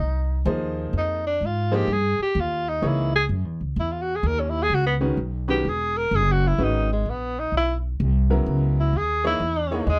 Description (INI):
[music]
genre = modal jazz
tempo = 128 BPM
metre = 4/4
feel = swing 66% on 8ths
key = unclear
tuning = A4 = 441 Hz
[part]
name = warm tenor saxophone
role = melody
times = 0.0-10.0 s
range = Ab3 to Bb4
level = -26 LUFS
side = equal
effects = none
[part]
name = upright bass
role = bass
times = 0.0-10.0 s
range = Fb1 to Ab2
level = -26 LUFS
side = equal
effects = none
[part]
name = bright upright piano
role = accompaniment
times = 0.5-9.9 s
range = Db3 to Db5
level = -29 LUFS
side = equal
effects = none
[sound]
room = little or no reverb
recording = close, detailed microphones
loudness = -23 LUFS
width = mono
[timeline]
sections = 0.0-10.0 A section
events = tenor saxophone solo 0.0-10.0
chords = 0.0 Fm11; 2.8 Dbm11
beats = 0.47 | 0.94 1.41 1.88 2.35 | 2.82 3.29 3.76 4.24 | 4.71 5.18 5.65 6.12 | 6.59 7.06 7.53 8.00 | 8.47 8.94 9.41 9.88